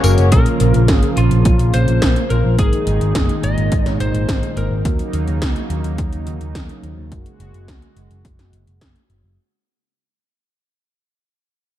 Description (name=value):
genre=synthwave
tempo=106 BPM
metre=4/4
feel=straight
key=Bb minor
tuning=A4 = 439 Hz
part: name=lightly driven lead guitar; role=melody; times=0.0-4.8 s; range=F4 to Eb5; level=-24 LUFS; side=left 2 dB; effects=ping-pong delay
part: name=brassy analog pad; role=sustained chords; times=0.0-9.4 s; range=Bb2 to Gb4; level=-24 LUFS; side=right 1 dB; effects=chorus, sidechain pumping
part: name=analog synth brass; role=stabs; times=0.0-9.3 s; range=F3 to Db5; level=-25 LUFS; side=left 1 dB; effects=chorus
part: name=picked electric bass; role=bass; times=0.0-9.4 s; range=Gb1 to Eb2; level=-17 LUFS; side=equal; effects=tube saturation, sidechain pumping
part: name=80s electronic pad drums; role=drums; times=0.0-9.2 s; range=hi-hat, snare drum, tambourine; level=-25 LUFS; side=equal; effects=overdrive
part: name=electronic kick drum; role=drums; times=0.3-8.9 s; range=none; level=-18 LUFS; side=equal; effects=overdrive
room=light reverb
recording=dark, warm production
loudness=-14 LUFS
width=side -12 dB against mid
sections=0.3-9.4 A section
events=fade-out 0.3-9.4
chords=0.3 Bbm; 2.6 Absus2; 4.9 Ebm7; 7.1 Gbadd9